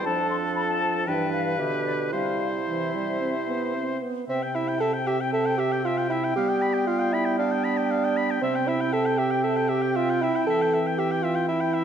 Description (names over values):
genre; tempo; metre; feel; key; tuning
quick classical-period movement for wind quintet; 116 BPM; 4/4; rubato; C major; A4 = 440 Hz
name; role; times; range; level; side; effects
hollow concert flute; melody; 0.0-11.8 s; D5 to C6; -32 LUFS; left 8 dB; none
clear oboe; second line; 0.0-11.8 s; A4 to B5; -30 LUFS; left 2 dB; none
bright clarinet; accompaniment; 0.0-11.8 s; B3 to G4; -31 LUFS; right 8 dB; none
warm French horn; accompaniment; 0.0-11.8 s; C3 to C4; -31 LUFS; equal; none
warm bassoon; bass; 0.0-11.8 s; F2 to A4; -26 LUFS; right 1 dB; none
room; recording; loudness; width
moderate concert hall reverb, RT60 1.8 s; none; -22 LUFS; side -8 dB against mid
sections
0.0-4.3 A section; 4.3-11.8 A section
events
none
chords
0.1 Dm/F; 1.1 G; 2.1 C; 6.4 G7; 8.4 C; 10.5 C/E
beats
| 0.05 0.56 1.08 1.59 | 2.13 2.68 3.22 3.76 | 4.29 4.81 5.33 5.84 | 6.36 6.87 7.39 7.91 | 8.42 8.93 9.45 9.96 | 10.47 10.98 11.48